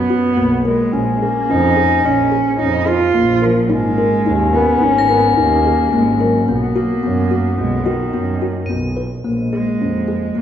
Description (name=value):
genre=contemporary instrumental, chamber music in an uneven meter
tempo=108 BPM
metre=5/4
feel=straight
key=Bb phrygian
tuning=A4 = 440 Hz
part: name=warm cello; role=melody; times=0.0-10.4 s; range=D#3 to F4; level=-19 LUFS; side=right 4 dB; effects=none
part: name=mellow clarinet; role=second line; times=0.0-10.4 s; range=Ab3 to Db4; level=-19 LUFS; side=left 5 dB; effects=none
part: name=kalimba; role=arpeggios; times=0.0-10.4 s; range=Bb3 to B4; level=-19 LUFS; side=left 2 dB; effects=none
part: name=rich double bass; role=bass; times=0.0-10.4 s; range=Ab1 to F#2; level=-20 LUFS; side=right 2 dB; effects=none
part: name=crotales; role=texture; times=5.0-9.4 s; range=Bb6 to D#7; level=-34 LUFS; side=left 2 dB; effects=none
room=wet recital hall reverb, RT60 1.7 s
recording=heard from further back in the room, nothing above 7.5 kHz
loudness=-13 LUFS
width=side -9 dB against mid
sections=0.0-9.2 A section; 9.2-10.4 B section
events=none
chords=0.0 B5; 0.9 Bbm7; 3.7 Absus2; 6.5 B; 9.2 Bbm7